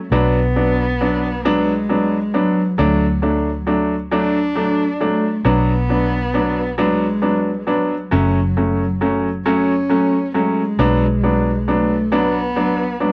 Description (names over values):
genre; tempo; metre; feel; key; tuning
six-eight pop ballad; 45 BPM (dotted quarters); 6/8; straight; unclear; A4 = 440 Hz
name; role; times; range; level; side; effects
vintage muted fingered electric bass; bass; 0.0-13.1 s; F#1 to D2; -24 LUFS; equal; none
dark cello; melody; 0.1-13.1 s; F#3 to D4; -24 LUFS; equal; cassette tape, tape echo
clear baby grand piano; accompaniment; 0.1-13.1 s; F#3 to D4; -20 LUFS; equal; cassette tape
room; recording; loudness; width
moderate spring reverb, RT60 1.1 s, small room ambience; home recording on cassette; -18 LUFS; mono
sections
0.0-13.1 A section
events
none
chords
0.1 Bm; 2.8 D; 5.5 Bm; 8.1 F#m; 10.8 Bm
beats
| 0.11 1.45 | 2.79 4.12 | 5.46 6.79 | 8.12 9.46 | 10.79 12.13